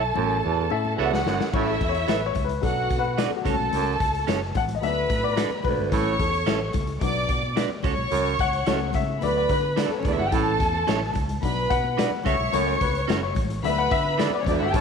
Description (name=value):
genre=uptempo 1960s-style soul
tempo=109 BPM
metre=4/4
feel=straight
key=D major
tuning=A4 = 437 Hz
part: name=warm studio violin section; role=second line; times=0.0-14.8 s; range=A3 to D6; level=-26 LUFS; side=right 1 dB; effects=slapback echo
part: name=warm baby grand piano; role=accompaniment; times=0.0-14.8 s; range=A2 to F#5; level=-28 LUFS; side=left 11 dB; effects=none
part: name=fingered electric bass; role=bass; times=0.0-14.8 s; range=F#1 to D3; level=-30 LUFS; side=right 1 dB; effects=none
part: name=warm baritone saxophone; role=riff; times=0.2-14.8 s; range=D2 to A2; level=-29 LUFS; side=right 12 dB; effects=none
part: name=congas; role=percussion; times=0.2-14.8 s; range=none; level=-38 LUFS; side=left 11 dB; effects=none
part: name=electric guitar at the edge of break-up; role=stabs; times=1.0-14.3 s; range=C#4 to E5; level=-30 LUFS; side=right 14 dB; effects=none
part: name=raw garage drum kit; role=drums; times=1.1-14.8 s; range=crash cymbal, hi-hat, kick drum, snare drum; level=-28 LUFS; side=left 2 dB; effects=none
room=moderate plate reverb, RT60 1.8 s, small room ambience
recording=1960s-style stereo with parts hard left and right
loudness=-21 LUFS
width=side -6 dB against mid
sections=0.0-1.5 A section; 1.5-14.8 B section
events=drum fill 0.0-1.5; grand piano solo 1.5-14.8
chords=0.0 A; 2.6 Bm; 3.5 F#m; 4.8 D; 5.9 A; 7.0 Bm; 7.8 F#m; 9.2 D; 10.3 A; 11.4 Bm; 12.3 F#m; 13.6 D